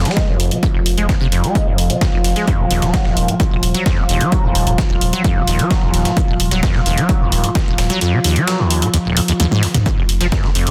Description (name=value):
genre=driving peak-time techno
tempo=130 BPM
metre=4/4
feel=straight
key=unclear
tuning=A4 = 444 Hz
part: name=acid bass, saw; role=riff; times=0.0-10.7 s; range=Eb1 to Ab3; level=-21 LUFS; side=equal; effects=ensemble chorus, sidechain pumping, dub echo
part: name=saturated sub bass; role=bass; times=0.0-10.7 s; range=Eb1 to F1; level=-22 LUFS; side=equal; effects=tube saturation, sidechain pumping, low-pass filter
part: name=analog drone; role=drone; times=0.0-10.7 s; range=F3 to F4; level=-25 LUFS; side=equal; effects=chorus, sidechain pumping
part: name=dusty soul sampler-style drum kit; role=drums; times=0.1-10.7 s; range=hi-hat, snare drum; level=-30 LUFS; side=equal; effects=high-pass filter on hats, high-pass filter on snare
part: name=punchy analog drum machine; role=drums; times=0.1-10.7 s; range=hi-hat, toms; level=-24 LUFS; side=equal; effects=overdrive, sidechain pumping on hats, sidechain pumping on toms
part: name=electronic kick drum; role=drums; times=0.2-10.4 s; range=none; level=-20 LUFS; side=equal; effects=overdrive
room=light reverb, digital ambience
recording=dense, heavily limited modern master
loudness=-16 LUFS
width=mono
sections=0.0-10.7 A section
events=drum fill 9.4-9.9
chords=0.0 Fm; 2.5 Ebm; 9.9 N.C.